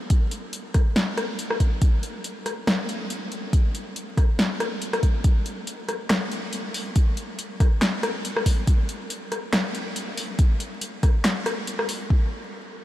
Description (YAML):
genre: dubstep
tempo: 140 BPM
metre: 4/4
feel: swing 55% on 16ths, half-time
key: none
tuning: none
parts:
  - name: deep house drum kit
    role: drums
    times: 0.1-12.8 s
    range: handclaps, hi-hat, rim click, snare drum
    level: -26 LUFS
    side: left 1 dB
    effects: overdrive, low-pass filter on hats, low-pass filter on snare, low-pass filter on room
  - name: electronic kick drum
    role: drums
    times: 0.1-12.2 s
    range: none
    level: -19 LUFS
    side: equal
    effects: overdrive
room: moderate huge ambient reverb, RT60 7.8 s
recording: dreamy mix soaked in reverb, vinyl crackle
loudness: -22 LUFS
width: side -14 dB against mid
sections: 0.0-12.1 A section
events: break 11.7-12.1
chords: none